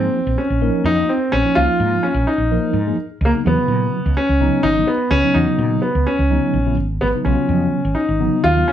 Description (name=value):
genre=electric jazz fusion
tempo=126 BPM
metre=4/4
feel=straight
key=unclear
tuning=A4 = 440 Hz
part: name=warm concert grand piano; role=melody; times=0.0-8.7 s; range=Bb3 to F4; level=-18 LUFS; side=equal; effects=slapback echo
part: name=mellow tine electric piano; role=accompaniment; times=0.0-8.7 s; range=Db3 to Bb4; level=-22 LUFS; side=equal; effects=medium stereo tremolo
part: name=woody fretless electric bass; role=bass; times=0.0-8.6 s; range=Ab1 to Bb2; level=-19 LUFS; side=equal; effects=none
room=light reverb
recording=band playing live in one room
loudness=-15 LUFS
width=side -10 dB against mid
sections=0.0-8.7 A section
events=none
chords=0.0 Bbm11; 3.2 Dbm11; 7.0 Abm7